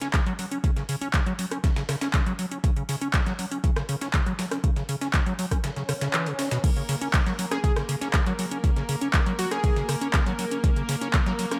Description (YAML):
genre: acid house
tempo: 120 BPM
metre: 4/4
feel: straight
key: unclear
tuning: A4 = 441 Hz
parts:
  - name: acid bass, square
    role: riff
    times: 0.0-11.6 s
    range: B2 to C#4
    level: -32 LUFS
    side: equal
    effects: analog chorus, tape echo
  - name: booming analog drum machine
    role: drums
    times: 0.0-11.6 s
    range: crash cymbal, handclaps, hi-hat, rim click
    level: -33 LUFS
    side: equal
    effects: none
  - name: dusty soul sampler-style drum kit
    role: drums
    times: 0.0-11.6 s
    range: hi-hat, snare drum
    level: -42 LUFS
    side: equal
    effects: none
  - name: electronic kick drum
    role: drums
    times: 0.1-11.2 s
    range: none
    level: -26 LUFS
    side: equal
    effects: overdrive
  - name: swell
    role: sound effects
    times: 5.7-6.6 s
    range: none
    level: -37 LUFS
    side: equal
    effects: none
  - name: rich chamber string section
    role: sustained chords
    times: 6.6-11.6 s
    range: A#3 to A#4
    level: -36 LUFS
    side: equal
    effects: sidechain pumping
  - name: plucky unison lead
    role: melody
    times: 7.5-9.9 s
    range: F#4 to G#4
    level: -35 LUFS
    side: equal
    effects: tape echo
room: light reverb, digital ambience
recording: none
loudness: -26 LUFS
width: mono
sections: 0.0-6.6 A section; 6.6-11.6 B section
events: kick drops out 5.6-6.6; swell 5.7-6.6; drop 6.6-11.6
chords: none